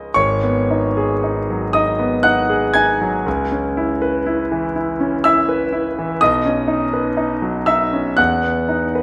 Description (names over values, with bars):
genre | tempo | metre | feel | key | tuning
classical, impressionist solo piano | 54-63 BPM | 3/4 | rubato | G# minor | A4 = 440 Hz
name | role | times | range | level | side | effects
bright concert grand piano | solo | 0.0-9.0 s | G#1 to G#6 | -18 LUFS | equal | none
room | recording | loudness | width
moderate recital hall reverb, RT60 1.7 s | none | -18 LUFS | mono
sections
0.0-9.0 A section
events
none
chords
0.2 G#m7; 3.3 C#m7; 6.2 Badd9; 8.2 E5